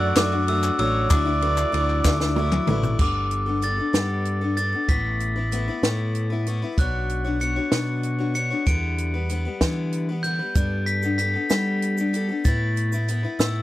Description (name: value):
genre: indie folk with a building arrangement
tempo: 63 BPM (dotted quarters)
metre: 6/8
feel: straight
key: unclear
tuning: A4 = 440 Hz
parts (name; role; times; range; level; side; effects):
- glockenspiel with soft plastic mallets; melody; 0.0-13.6 s; D6 to D7; -27 LUFS; left 1 dB; none
- mellow trumpet; second line; 0.0-2.7 s; C#5 to D5; -29 LUFS; right 5 dB; none
- bright upright piano; accompaniment; 0.0-3.0 s; F#1 to E5; -32 LUFS; right 9 dB; none
- picked steel-string acoustic guitar; accompaniment; 0.0-13.6 s; A2 to C#5; -28 LUFS; left 5 dB; none
- picked electric bass; bass; 0.0-13.6 s; G1 to G3; -25 LUFS; equal; none
- compact cocktail drum kit; drums; 0.2-13.5 s; crash cymbal, hi-hat, kick drum, ride cymbal, snare drum, toms; -23 LUFS; equal; none
- egg shaker; percussion; 0.2-2.9, 10.6-13.5 s; none; -40 LUFS; right 14 dB; none
- group handclap; percussion; 0.2-2.8 s; none; -32 LUFS; left 6 dB; none
room: little or no reverb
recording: dry, close 1970s-style studio recording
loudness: -20 LUFS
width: side -15 dB against mid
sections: 0.0-3.0 A section; 3.0-13.6 B section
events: drum fill 2.1-3.0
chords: 0.0 D/F#; 1.1 Dadd9; 3.0 Gadd9; 4.9 Asus2; 6.8 Bmadd9; 8.7 Em7; 10.6 Gadd9; 12.5 Asus2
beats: 0.17 | 1.11 2.05 | 3.00 3.94 | 4.89 5.83 | 6.78 7.72 | 8.67 9.62 | 10.56 11.51 | 12.46 13.40